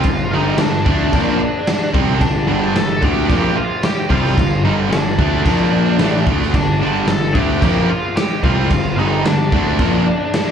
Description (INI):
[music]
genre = quiet-loud alternative rock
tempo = 111 BPM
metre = 4/4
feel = straight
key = G minor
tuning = A4 = 440 Hz
[part]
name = octave-fuzz lead guitar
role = melody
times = 0.0-10.5 s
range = D4 to A5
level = -21 LUFS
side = equal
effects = distortion, slapback echo
[part]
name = crunchy overdriven guitar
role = riff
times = 0.0-10.1 s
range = G2 to D4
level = -22 LUFS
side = left 9 dB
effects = slapback echo
[part]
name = distorted electric guitar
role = riff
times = 0.0-10.1 s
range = G2 to D4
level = -22 LUFS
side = right 11 dB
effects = overdrive, slapback echo
[part]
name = fuzz picked electric bass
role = bass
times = 0.0-10.0 s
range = G1 to D2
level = -19 LUFS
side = equal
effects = overdrive
[part]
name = raw garage drum kit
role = drums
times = 0.0-10.5 s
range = crash cymbal, kick drum, snare drum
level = -19 LUFS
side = equal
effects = none
[sound]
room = small room ambience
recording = live gig heard through the venue's PA, club reverb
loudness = -14 LUFS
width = side -8 dB against mid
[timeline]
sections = 0.0-10.5 A section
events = none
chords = 0.0 Gm; 5.5 Bb5; 6.0 Gm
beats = | 0.05 0.59 1.13 1.67 | 2.21 2.75 3.30 3.84 | 4.38 4.92 5.46 6.00 | 6.54 7.08 7.63 8.17 | 8.71 9.25 9.79 10.33